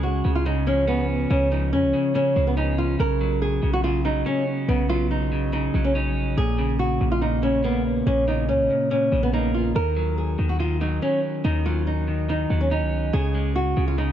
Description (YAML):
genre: hip hop, trap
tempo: 142 BPM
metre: 4/4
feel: half-time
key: Eb minor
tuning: A4 = 437 Hz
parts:
  - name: nylon-string guitar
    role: melody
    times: 0.0-14.1 s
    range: Cb4 to Bb4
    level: -24 LUFS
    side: right 1 dB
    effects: low-pass filter
  - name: electric guitar at the edge of break-up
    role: accompaniment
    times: 0.0-14.1 s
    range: Bb2 to Db4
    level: -26 LUFS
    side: equal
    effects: low-pass filter
  - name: warm 808-style bass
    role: bass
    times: 0.0-14.1 s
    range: Bb1 to F2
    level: -24 LUFS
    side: equal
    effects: none
room: light reverb, small room ambience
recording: nothing above 10.4 kHz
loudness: -20 LUFS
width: side -10 dB against mid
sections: 0.0-9.8 A section; 9.8-14.1 B section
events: none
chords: 0.0 Db; 3.0 Bsus2; 6.4 Bbm; 9.8 Ebm7; 13.1 Db5